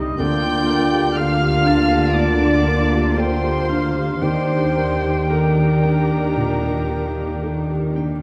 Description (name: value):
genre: cinematic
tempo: 55-62 BPM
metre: 4/4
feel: rubato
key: unclear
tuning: A4 = 440 Hz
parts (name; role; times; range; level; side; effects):
- clear oboe; second line; 0.0-8.0 s; D5 to A5; -29 LUFS; equal; none
- felt-muted upright piano; accompaniment; 0.0-8.2 s; D2 to D5; -27 LUFS; equal; none
- muted symphonic viola section; accompaniment; 0.0-8.2 s; G3 to G4; -31 LUFS; equal; none
- mellow French horn section; sustained chords; 0.0-8.1 s; G3 to D5; -28 LUFS; equal; none
- concert harp; arpeggios; 0.0-8.2 s; C3 to G5; -32 LUFS; equal; none
- muted symphonic cello section; bass; 0.0-8.2 s; C3 to Eb3; -25 LUFS; equal; none
- muted symphonic double bass section; bass; 0.0-8.2 s; C2 to Eb2; -26 LUFS; equal; none
- muted chamber violin section; melody; 0.2-7.9 s; Bb5 to G6; -32 LUFS; equal; none
- mellow hollow flute section; second line; 0.2-8.0 s; Bb4 to G5; -29 LUFS; equal; none
- muted symphonic violin section; second line; 0.2-8.0 s; Bb4 to G5; -33 LUFS; equal; none
room: moderate scoring stage reverb, RT60 1.8 s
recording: none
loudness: -19 LUFS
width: mono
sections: 0.0-8.2 A section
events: none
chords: 0.2 Gm7/D; 4.2 Ebmaj7